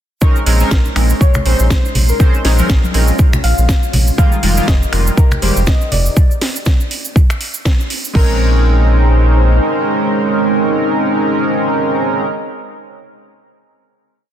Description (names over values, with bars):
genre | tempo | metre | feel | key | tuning
deep house | 121 BPM | 4/4 | swing 58% on 16ths | Bb dorian | A4 = 439 Hz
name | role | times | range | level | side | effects
soft round pluck | melody | 0.2-12.2 s | Bb4 to F5 | -25 LUFS | left 2 dB | lush chorus, ping-pong delay
soft string machine | sustained chords | 0.9-12.2 s | Ab3 to C6 | -24 LUFS | equal | ensemble chorus, sidechain pumping
chorused polysynth | stabs | 0.2-12.3 s | Eb3 to C5 | -17 LUFS | right 1 dB | sidechain pumping, tape echo
electronic kick drum | drums | 0.2-8.3 s | none | -12 LUFS | equal | none
cabasa | percussion | 0.2-8.1 s | none | -26 LUFS | right 5 dB | none
round analog bass | bass | 0.5-9.6 s | F1 to Bb1 | -12 LUFS | equal | sidechain pumping
house drum kit | drums | 0.5-8.3 s | crash cymbal, finger snaps, hi-hat, snare drum | -22 LUFS | right 1 dB | none
congas | percussion | 1.4-6.0 s | none | -22 LUFS | left 1 dB | sidechain pumping on perc
room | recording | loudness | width
light reverb, digital ambience | dense, heavily limited modern master | -11 LUFS | side -10 dB against mid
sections
0.2-8.2 groove; 8.2-12.1 final chord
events
none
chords
0.2 Bbm11; 4.2 Fm11; 6.2 N.C.; 8.2 Bbm11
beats
| 0.22 0.71 1.21 1.70 | 2.20 2.69 3.19 3.69 | 4.18 4.68 5.17 5.67 | 6.17 6.66 7.16 7.65 | 8.15 8.65 9.14 9.64 | 10.13 10.63 11.12 11.62